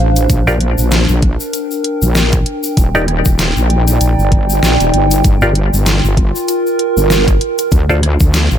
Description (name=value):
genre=glitch hop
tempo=97 BPM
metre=4/4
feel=swing 57% on 16ths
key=G minor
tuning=A4 = 440 Hz
part: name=wobble bass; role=bass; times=0.0-8.6 s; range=Eb1 to D2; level=-13 LUFS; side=equal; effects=chorus, tube saturation
part: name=warbly tape-like pad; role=texture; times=0.0-8.6 s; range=D4 to G5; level=-17 LUFS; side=right 1 dB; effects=chorus, built-in reverb, sidechain pumping
part: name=pop drum kit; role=drums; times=0.2-8.5 s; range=hi-hat, rim click, snare drum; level=-17 LUFS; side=equal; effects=overdrive
part: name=egg shaker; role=percussion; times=0.2-8.6 s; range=none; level=-24 LUFS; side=left 4 dB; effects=none
part: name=electronic kick drum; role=drums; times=0.3-8.3 s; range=none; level=-12 LUFS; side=equal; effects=overdrive
part: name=muted clav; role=stabs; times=0.5-8.0 s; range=Eb4 to D5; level=-18 LUFS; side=left 1 dB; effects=sidechain pumping, ping-pong delay
room=little or no reverb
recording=none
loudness=-10 LUFS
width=side -9 dB against mid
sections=0.0-8.6 A section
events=none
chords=0.3 Bb6; 2.8 Ebmaj7; 5.2 Gm7; 7.7 Dm7